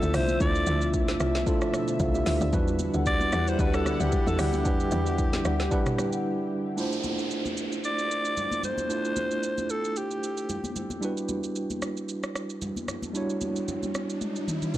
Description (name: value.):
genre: amapiano.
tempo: 113 BPM.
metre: 4/4.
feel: swing 55% on 16ths.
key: unclear.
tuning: A4 = 440 Hz.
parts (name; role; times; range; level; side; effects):
breathy alto saxophone; melody; 0.0-10.8 s; G4 to D5; -31 LUFS; left 1 dB; analog delay.
tine electric piano; accompaniment; 0.0-14.8 s; G3 to F#5; -30 LUFS; right 2 dB; medium tremolo.
lush unison pad; sustained chords; 0.0-6.8 s; B2 to F#5; -35 LUFS; equal; chorus, sidechain pumping.
woody log drum bass; bass; 0.0-5.7 s; C2 to E2; -28 LUFS; equal; none.
afro-pop drum kit; drums; 0.0-14.8 s; hi-hat, kick drum, rim click, shaker, snare drum, toms; -31 LUFS; equal; vintage 12-bit sampler grit.
congas; percussion; 0.0-14.8 s; none; -38 LUFS; left 3 dB; none.
marimba with medium mallets; stabs; 0.1-6.2 s; F4 to F#5; -34 LUFS; left 2 dB; analog delay.
downlifter and riser; sound effects; 6.8-14.8 s; none; -39 LUFS; equal; none.
room: little or no reverb.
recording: dry, gritty hardware recording.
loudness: -25 LUFS.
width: side -14 dB against mid.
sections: 0.0-6.8 A section; 6.8-14.8 B section.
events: drop 0.0-6.8; break 6.2-6.8; riser 12.6-14.8; drum fill 14.2-14.8.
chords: 0.0 Dm9; 2.5 Em9; 6.8 Dm9; 11.0 Em9.